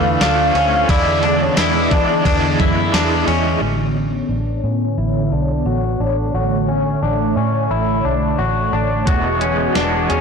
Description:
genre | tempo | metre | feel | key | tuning
dream pop | 88 BPM | 4/4 | straight | unclear | A4 = 440 Hz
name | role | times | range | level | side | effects
soft octave-layered synth lead | melody | 0.0-2.9 s | C#5 to F5 | -19 LUFS | left 1 dB | chorus, tape echo
cranked stack guitar | accompaniment | 0.0-4.1, 9.1-10.2 s | E2 to F#4 | -22 LUFS | right 4 dB | overdrive, tremolo, wide subtle chorus, low-pass filter
hollow soft pad | sustained chords | 0.0-10.2 s | D3 to C#5 | -21 LUFS | right 1 dB | ensemble chorus, low-pass filter
direct-recorded clean electric guitar | arpeggios | 0.0-10.2 s | E3 to F#4 | -21 LUFS | left 4 dB | lush chorus, low-pass filter, tape echo
vintage muted fingered electric bass | bass | 0.0-10.2 s | E1 to E3 | -21 LUFS | equal | tube saturation
vibraphone with soft mallets | texture | 0.0-1.4 s | D4 to G#5 | -34 LUFS | equal | none
crisp 8-bit digital drum machine | drums | 0.2-3.4, 9.1-10.2 s | hi-hat, kick drum, ride cymbal, snare drum, tambourine | -21 LUFS | equal | none
room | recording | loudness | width
moderate lush hall reverb, RT60 1.9 s, digital ambience | blown-out, overdriven recording, overdrive | -15 LUFS | side -5 dB against mid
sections
0.0-3.6 A section; 3.6-10.2 B section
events
filter sweep 3.6-10.2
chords
0.0 Dmadd9; 0.9 E7; 3.6 Bmadd9/A; 9.1 Eadd9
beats
0.21 | 0.89 1.57 2.26 2.94 | 3.62 4.30 4.98 5.67 | 6.35 7.03 7.71 8.39 | 9.07 9.76

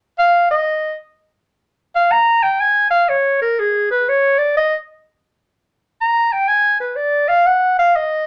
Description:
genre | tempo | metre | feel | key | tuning
jazz | 124 BPM | 4/4 | swing 66% on 8ths | unclear | A4 = 440 Hz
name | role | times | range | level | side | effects
breathy clarinet | solo | 0.2-8.3 s | Ab4 to Bb5 | -16 LUFS | equal | none
room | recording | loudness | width
wet small room reverb, RT60 0.5 s | none | -16 LUFS | mono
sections
0.0-8.3 A section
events
none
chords
none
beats
0.18 0.66 1.14 | 1.63 2.11 2.60 3.08 | 3.56 4.05 4.53 5.02 | 5.50 5.98 6.47 6.95 | 7.44 7.92

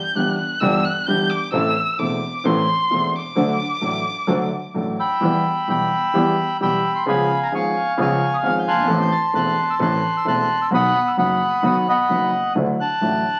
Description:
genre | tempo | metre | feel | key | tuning
tango | 131 BPM | 4/4 | rubato | unclear | A4 = 440 Hz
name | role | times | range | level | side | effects
warm violin | second line | 0.0-5.0 s | C6 to G6 | -24 LUFS | equal | none
warm concert grand piano | accompaniment | 0.2-13.2 s | E1 to A4 | -24 LUFS | equal | none
clear double bass | bass | 0.2-13.2 s | E1 to E2 | -31 LUFS | equal | none
bandoneon | melody | 5.0-13.4 s | D#5 to A6 | -21 LUFS | equal | none
room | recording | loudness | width
wet studio reverb, RT60 0.7 s | very old 78 rpm record, vinyl crackle | -20 LUFS | mono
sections
0.0-5.2 A section; 5.2-13.4 B section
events
violin solo 0.0-5.2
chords
0.0 Em/G; 1.5 Am; 3.4 D; 5.2 Em; 7.1 C#7; 8.9 Am; 10.7 B; 12.6 Dadd9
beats
0.16 0.62 1.07 | 1.53 1.99 2.44 2.90 | 3.36 3.82 4.28 4.75 | 5.21 5.68 6.14 6.60 | 7.06 7.52 7.98 8.44 | 8.89 9.34 9.80 10.26 | 10.72 11.17 11.63 12.10 | 12.56 13.02

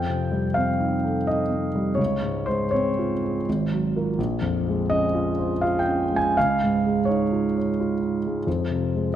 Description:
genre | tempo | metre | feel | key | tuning
classical, impressionist solo piano | 83 BPM | 3/4 | rubato | Db lydian | A4 = 440 Hz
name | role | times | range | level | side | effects
clear concert grand piano | solo | 0.0-9.2 s | Ab1 to Ab5 | -21 LUFS | equal | none
room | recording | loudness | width
moderate concert hall reverb, RT60 2.1 s | dark, warm production | -21 LUFS | side -10 dB against mid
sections
0.0-9.2 A section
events
none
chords
0.0 F9; 2.0 Dbmaj7; 3.5 Absus2; 4.2 Bbm9; 6.4 Dbadd9; 8.5 Fm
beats
0.54 1.26 | 1.99 2.73 3.47 | 4.18 4.90 5.63 | 6.36 7.07 7.77 | 8.47 9.15

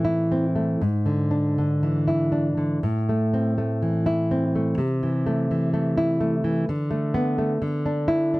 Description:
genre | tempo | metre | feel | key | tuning
romantic piece for solo classical guitar | 61 BPM | 2/4 | uneven beats, rubato | A minor | A4 = 440 Hz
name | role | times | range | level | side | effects
nylon-string guitar | solo | 0.0-8.4 s | G#2 to E4 | -21 LUFS | equal | none
room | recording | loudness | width
little or no reverb | dry, close 1970s-style studio recording | -21 LUFS | side -20 dB against mid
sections
0.0-8.4 A section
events
none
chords
0.0 Am; 0.8 E7/G#; 2.8 Am; 4.8 Am/C; 6.7 Bm7/D; 7.6 Dsus2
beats
| 0.81 1.81 | 2.81 3.80 | 4.78 5.74 | 6.67 7.61

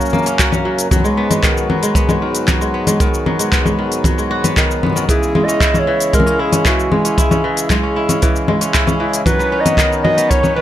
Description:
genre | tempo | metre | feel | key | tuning
folktronica | 115 BPM | 4/4 | straight | unclear | A4 = 441 Hz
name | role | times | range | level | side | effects
hand-pumped harmonium | sustained chords | 0.0-10.6 s | F#2 to E4 | -21 LUFS | left 1 dB | plate reverb
kora | arpeggios | 0.0-10.6 s | D#3 to F#4 | -18 LUFS | right 1 dB | digital delay, plate reverb
organic electronic drum kit | drums | 0.0-10.5 s | congas, handclaps, hi-hat, shaker | -18 LUFS | left 2 dB | none
kick drum | drums | 0.4-10.4 s | none | -18 LUFS | equal | none
dark clarinet | melody | 5.1-10.6 s | F#4 to D#5 | -17 LUFS | equal | digital delay
room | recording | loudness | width
moderate studio reverb, RT60 0.6 s | none | -12 LUFS | side -12 dB against mid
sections
0.0-10.6 A section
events
none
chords
0.0 F#; 0.9 G#m7; 5.1 C#m; 9.3 Badd9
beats
0.39 | 0.91 1.44 1.96 2.48 | 3.00 3.52 4.04 4.57 | 5.09 5.61 6.13 6.65 | 7.17 7.70 8.22 8.74 | 9.26 9.78 10.30

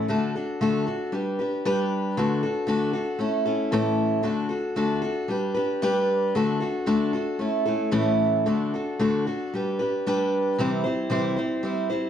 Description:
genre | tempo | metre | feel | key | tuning
rock | 114 BPM | 4/4 | straight | D major | A4 = 435 Hz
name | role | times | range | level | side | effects
picked steel-string acoustic guitar | solo | 0.0-12.1 s | A2 to C5 | -22 LUFS | equal | slapback echo
room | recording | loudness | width
moderate large studio reverb, RT60 1.1 s | dark, warm production | -22 LUFS | side -9 dB against mid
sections
0.0-10.6 A section; 10.6-12.1 B section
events
none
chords
0.1 D; 1.1 G; 2.2 D; 3.2 A; 4.3 D; 5.3 G; 6.4 D; 7.4 A; 8.5 D; 9.5 G; 10.6 C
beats
| 0.08 0.60 1.13 1.65 | 2.17 2.70 3.22 3.75 | 4.27 4.79 5.32 5.84 | 6.37 6.89 7.42 7.95 | 8.48 9.00 9.53 10.06 | 10.59 11.12 11.65

